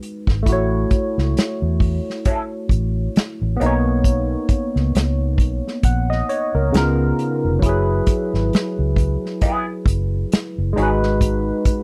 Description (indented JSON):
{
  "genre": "R&B, neo-soul",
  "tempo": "67 BPM",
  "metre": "4/4",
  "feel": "swing 57% on 16ths",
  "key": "B major",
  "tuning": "A4 = 439 Hz",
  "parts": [
    { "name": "barky tine electric piano", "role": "accompaniment", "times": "0.0-11.8 s", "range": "C#3 to F#5", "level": "-24 LUFS", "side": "equal", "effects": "overdrive, analog chorus" },
    { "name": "unplugged drum kit", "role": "drums", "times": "0.0-11.8 s", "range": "hi-hat, kick drum, snare drum", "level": "-21 LUFS", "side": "equal", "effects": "none" },
    { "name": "vintage muted fingered electric bass", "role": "bass", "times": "0.3-11.5 s", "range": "E#1 to E2", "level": "-23 LUFS", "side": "equal", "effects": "none" },
    { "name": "electric guitar through a small old amp", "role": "second line", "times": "2.3-3.7, 9.4-10.9 s", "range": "F#3 to A#4", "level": "-25 LUFS", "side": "equal", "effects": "wah" }
  ],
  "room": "little or no reverb",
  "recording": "dry, close 1970s-style studio recording",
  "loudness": "-19 LUFS",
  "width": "mono",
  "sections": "0.0-11.8 A section",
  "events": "none",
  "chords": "0.5 A6; 3.6 Bmaj9; 6.7 C#13; 7.6 F#9sus4; 10.8 Emaj9 (rootless)"
}